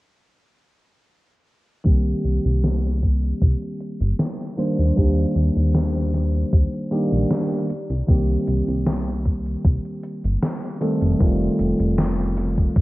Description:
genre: vaporwave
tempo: 77 BPM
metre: 4/4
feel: straight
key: C dorian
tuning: A4 = 440 Hz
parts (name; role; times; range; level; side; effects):
- bell-like tine electric piano; accompaniment; 1.8-12.8 s; Eb3 to C5; -23 LUFS; equal; wide subtle chorus, tape echo
- chorused synth bass; bass; 1.9-12.7 s; F1 to Eb2; -21 LUFS; equal; none
- electronic kick drum; drums; 1.9-12.8 s; none; -18 LUFS; equal; none
- gated 80s digital drum machine; drums; 1.9-12.8 s; hi-hat, snare drum; -25 LUFS; equal; gated reverb, gated reverb snare
room: light reverb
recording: cassette tape, low-pass filter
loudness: -19 LUFS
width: side -19 dB against mid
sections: 1.9-12.8 A section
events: filter sweep 1.9-12.8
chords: 1.9 Cm7; 4.6 Ebmaj7; 7.7 Cm7; 10.8 F9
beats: | 1.85 2.63 3.41 4.19 | 4.97 5.75 6.53 7.31 | 8.09 8.87 9.65 10.43 | 11.21 11.98 12.76

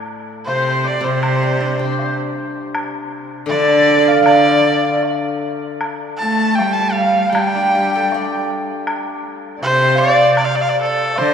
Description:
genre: chinese traditional, Chinese chamber ensemble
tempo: 79 BPM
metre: 2/4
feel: rubato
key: D yu mode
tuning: A4 = 440 Hz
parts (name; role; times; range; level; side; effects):
- hammered dulcimer; second line; 0.0-11.3 s; A4 to A5; -22 LUFS; right 4 dB; none
- steel-string zither; accompaniment; 0.0-9.6 s; A2 to D5; -24 LUFS; left 4 dB; none
- clear erhu; melody; 0.5-11.3 s; A4 to A5; -18 LUFS; equal; none
- clear cello; second line; 0.5-11.3 s; C3 to A3; -22 LUFS; right 2 dB; none
- large dizi; second line; 0.5-11.3 s; C5 to A5; -22 LUFS; left 4 dB; none
- woodblock; percussion; 0.5-11.3 s; none; -28 LUFS; left 1 dB; none
room: wet cathedral reverb, RT60 4.4 s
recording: recorded in a church or concert hall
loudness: -14 LUFS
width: side -7 dB against mid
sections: 0.0-11.3 A section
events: none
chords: none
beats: 0.47 | 1.23 1.98 | 2.74 3.50 | 4.26 5.04 | 5.82 6.59 | 7.35 8.12 | 8.87 9.62 | 10.38 11.15

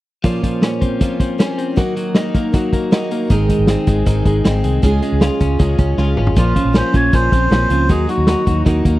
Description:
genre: jangly indie pop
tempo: 157 BPM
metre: 4/4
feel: straight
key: Bb minor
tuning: A4 = 440 Hz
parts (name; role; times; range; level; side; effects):
- picked steel-string acoustic guitar; accompaniment; 0.2-9.0 s; Ab2 to C5; -21 LUFS; right 4 dB; none
- twelve-string electric guitar; arpeggios; 0.2-9.0 s; Eb3 to F4; -20 LUFS; left 4 dB; none
- vintage drum kit; drums; 0.2-8.9 s; hi-hat, kick drum, snare drum, toms; -17 LUFS; equal; none
- vintage muted fingered electric bass; bass; 3.3-9.0 s; Ab1 to Eb2; -17 LUFS; equal; none
- melodica; melody; 6.4-8.6 s; F4 to Db5; -19 LUFS; equal; none
room: small room ambience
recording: dry, close 1970s-style studio recording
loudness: -13 LUFS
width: side -16 dB against mid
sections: 0.2-6.4 A section; 6.4-9.0 B section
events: drum fill 6.0-6.4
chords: 0.2 Bbmadd9; 1.8 Ebm; 3.3 Ab; 4.8 Db; 6.4 Bbmadd9; 7.9 Ebm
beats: | 0.24 0.62 1.00 1.39 | 1.77 2.15 2.54 2.92 | 3.30 3.69 4.07 4.45 | 4.83 5.22 5.60 5.98 | 6.36 6.75 7.13 7.51 | 7.89 8.28 8.66

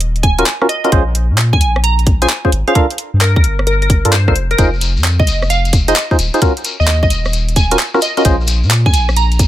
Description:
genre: UK garage, two-step garage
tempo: 131 BPM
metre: 4/4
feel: swing 66% on 16ths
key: unclear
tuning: A4 = 440 Hz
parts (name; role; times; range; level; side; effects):
- soft dub sub bass; bass; 0.0-9.5 s; Eb1 to Bb2; -14 LUFS; equal; sidechain pumping
- garage drum kit; drums; 0.0-9.5 s; handclaps, hi-hat, rim click; -18 LUFS; equal; overdrive, small room ambience
- glassy wavetable pluck; melody; 0.2-9.3 s; Bb4 to Bb5; -19 LUFS; right 2 dB; chorus, cassette tape
- electronic kick drum; drums; 0.2-9.5 s; none; -13 LUFS; equal; overdrive, small room ambience
- percussive organ stab; stabs; 0.4-8.4 s; Db4 to C5; -16 LUFS; equal; chorus, dub echo
- shekere; percussion; 4.6-9.5 s; none; -23 LUFS; left 5 dB; none
room: light reverb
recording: none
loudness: -11 LUFS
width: side -13 dB against mid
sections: 0.0-9.5 A section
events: none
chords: 0.0 Ebm7; 0.9 Bbm7; 2.8 Gm7; 4.6 Fm7; 6.4 Ebm7; 8.2 Bbm7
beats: 0.01 0.46 | 0.92 1.38 1.84 2.29 | 2.75 3.21 3.67 4.13 | 4.58 5.04 5.50 5.96 | 6.42 6.88 7.33 7.79 | 8.25 8.71 9.16

